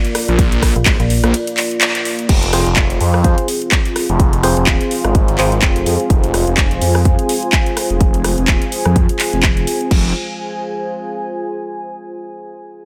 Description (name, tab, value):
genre	bass house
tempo	126 BPM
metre	4/4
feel	swing 56% on 16ths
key	F dorian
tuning	A4 = 440 Hz
part	dark analog pad	sustained chords	0.0-10.1 s	Bb3 to D5	-25 LUFS	equal	chorus, vintage 12-bit sampler grit, sidechain pumping
part	house drum kit	drums	0.0-10.0 s	crash cymbal, handclaps, hi-hat, ride cymbal, rim click	-21 LUFS	equal	small room reverb
part	phased detuned saw bass	bass	0.3-10.1 s	Eb1 to F2	-19 LUFS	equal	phaser, tube saturation, sidechain pumping
part	electronic kick drum	drums	0.4-10.0 s	none	-17 LUFS	equal	small room reverb
part	metallic FM bass	bass	0.8-1.2 s	Bb1	-18 LUFS	equal	tube saturation, sidechain pumping
part	deep dark ambient pad	texture	3.6-11.8 s	F4 to Ab5	-26 LUFS	equal	chorus, built-in reverb, sidechain pumping
part	percussive organ stab	stabs	2.5-5.5 s	C4 to C5	-24 LUFS	equal	chorus, cassette tape, sidechain pumping, dub echo
room	light reverb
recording	none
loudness	-15 LUFS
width	mono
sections	0.0-2.3 A section; 2.3-9.9 B section; 9.9-11.8 C section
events	drop 0.0-2.3; break 1.3-2.3; band accent 1.8; filter sweep on detuned saw bass 2.3-9.9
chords	0.0 Bb; 2.3 Fm